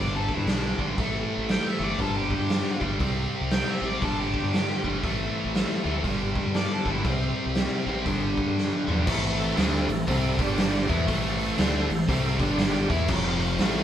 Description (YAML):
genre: blues rock power trio and southern rock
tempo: 119 BPM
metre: 4/4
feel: swing 62% on 8ths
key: A minor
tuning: A4 = 439 Hz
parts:
  - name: octave-fuzz lead guitar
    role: melody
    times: 0.0-7.1 s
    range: D4 to G5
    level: -32 LUFS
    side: left 1 dB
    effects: distortion
  - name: tonewheel organ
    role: sustained chords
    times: 0.0-13.8 s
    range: B3 to D5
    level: -37 LUFS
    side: right 3 dB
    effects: slow rotary speaker, overdrive, chorus vibrato
  - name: biting overdriven guitar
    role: riff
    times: 0.0-13.8 s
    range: F2 to E4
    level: -27 LUFS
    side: equal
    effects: none
  - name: growling fingered electric bass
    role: bass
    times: 0.0-13.8 s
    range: F1 to G2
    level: -30 LUFS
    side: equal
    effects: overdrive
  - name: raw garage drum kit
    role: drums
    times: 0.3-13.7 s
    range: crash cymbal, hi-hat, kick drum, snare drum, toms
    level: -28 LUFS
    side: equal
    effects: none
room: moderate stone room reverb, RT60 1.0 s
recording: band playing live in one room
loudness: -23 LUFS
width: side -10 dB against mid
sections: 0.0-9.1 A section; 9.1-13.8 B section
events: drum fill 8.6-9.1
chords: 0.0 G; 1.0 Am; 2.0 G; 3.0 C; 4.0 G; 5.0 Am; 6.0 G; 7.0 C; 8.1 G; 9.1 Am; 10.3 G5; 10.8 Am; 12.3 G5; 12.8 E5; 13.1 F5